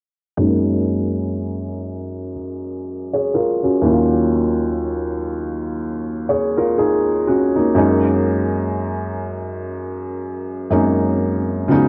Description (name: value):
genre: R&B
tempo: 61 BPM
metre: 4/4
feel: swing 58% on 16ths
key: F# major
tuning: A4 = 441 Hz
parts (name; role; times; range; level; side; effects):
- felt-muted upright piano; accompaniment; 0.4-11.9 s; D#2 to C#5; -20 LUFS; equal; low-pass filter
room: light reverb, small room ambience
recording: worn, warbling old tape, cassette tape, warbly pitch drift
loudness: -20 LUFS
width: mono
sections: 0.4-11.9 A section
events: filter sweep on felt piano 0.4-11.9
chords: 0.4 F#69; 3.8 D#m7; 7.8 F#69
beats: | 0.39 1.37 2.35 3.34 | 4.32 5.30 6.29 7.27 | 8.25 9.24 10.22 11.21